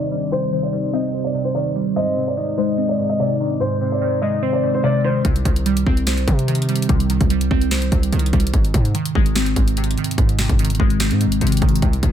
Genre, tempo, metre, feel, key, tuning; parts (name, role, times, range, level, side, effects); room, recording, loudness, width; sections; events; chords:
hip hop, trap; 146 BPM; 4/4; half-time; C minor; A4 = 438 Hz
dark concert grand piano; melody; 0.0-5.2 s; C5 to Eb5; -23 LUFS; right 1 dB; low-pass filter, ping-pong delay
soft octave-layered synth lead; second line; 0.0-4.8 s; C5 to Eb5; -26 LUFS; left 4 dB; chorus, ping-pong delay
glassy digital keys; accompaniment; 0.0-12.1 s; Ab2 to C5; -21 LUFS; equal; chorus, phaser, low-pass filter
dark analog pad; sustained chords; 0.0-5.2 s; C3 to C5; -27 LUFS; right 2 dB; chorus
distorted 808-style bass; bass; 5.2-12.1 s; G1 to C3; -20 LUFS; equal; distortion
trap drum kit; drums; 5.2-12.1 s; hi-hat, kick drum, snare drum; -20 LUFS; equal
little or no reverb; low-pass filter; -16 LUFS; side -9 dB against mid
0.0-5.2 A section; 5.2-12.1 B section
filter sweep 0.0-5.2
0.0 Cm; 2.0 Ab; 5.2 Cm; 8.5 Ab